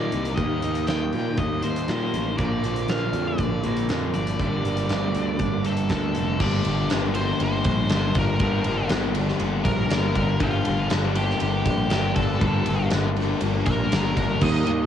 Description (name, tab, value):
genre	rock, shoegaze and dream pop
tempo	120 BPM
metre	4/4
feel	straight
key	G minor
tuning	A4 = 440 Hz
part	octave-fuzz lead guitar	melody	0.0-14.9 s	F4 to G5	-30 LUFS	equal	distortion, cassette tape, plate reverb, analog delay
part	twangy electric guitar	arpeggios	0.0-14.9 s	F3 to A4	-39 LUFS	right 9 dB	none
part	crunchy overdriven guitar	riff	0.0-14.9 s	G2 to Eb4	-28 LUFS	left 8 dB	wide subtle chorus, cassette tape
part	crunchy overdriven guitar	riff	0.0-14.9 s	G2 to Eb4	-28 LUFS	equal	cassette tape
part	overdriven semi-hollow guitar	riff	0.0-6.4, 14.4-14.9 s	G2 to Eb4	-30 LUFS	right 9 dB	reverse reverb, cassette tape
part	modern bright picked electric bass	bass	0.0-14.9 s	F1 to Bb2	-27 LUFS	equal	none
part	big rock drum kit	drums	0.1-14.8 s	crash cymbal, hi-hat, kick drum, ride cymbal, snare drum	-28 LUFS	right 1 dB	none
room	light reverb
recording	home recording on cassette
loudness	-21 LUFS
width	side -9 dB against mid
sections	0.0-6.4 A section; 6.4-14.9 B section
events	none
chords	0.0 Ebmaj7; 2.4 Bbmaj9; 4.4 Gm9; 6.4 Gm7